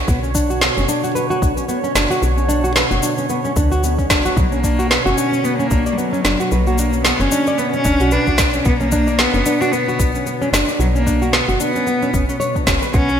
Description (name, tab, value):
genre	organic downtempo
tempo	112 BPM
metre	4/4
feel	swing 57% on 16ths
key	B harmonic minor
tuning	A4 = 440 Hz
part	warbly tape-like pad	sustained chords	0.0-13.2 s	B2 to C#5	-25 LUFS	right 1 dB	chorus, built-in reverb, sidechain pumping
part	woody FM bass	bass	0.0-13.2 s	F#1 to D2	-20 LUFS	equal	tube saturation
part	nylon-string guitar	arpeggios	0.1-13.2 s	B3 to D5	-20 LUFS	equal	digital delay
part	electronic cabasa and snare drum	drums	0.1-13.2 s	none	-20 LUFS	equal	gated reverb
part	electronic kick drum	drums	0.1-13.1 s	none	-20 LUFS	equal	none
part	warm cello	melody	4.4-13.2 s	F#3 to D4	-19 LUFS	left 1 dB	ping-pong delay
room	moderate lush hall reverb, RT60 1.8 s, digital ambience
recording	bright 1980s-style digital production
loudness	-14 LUFS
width	side -8 dB against mid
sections	0.0-12.9 A section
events	none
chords	0.0 Bmadd9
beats	| 0.08 0.62 1.15 1.69 | 2.23 2.76 3.30 3.83 | 4.37 4.90 5.44 5.98 | 6.51 7.05 7.58 8.12 | 8.65 9.19 9.73 10.26 | 10.80 11.33 11.87 12.40 | 12.94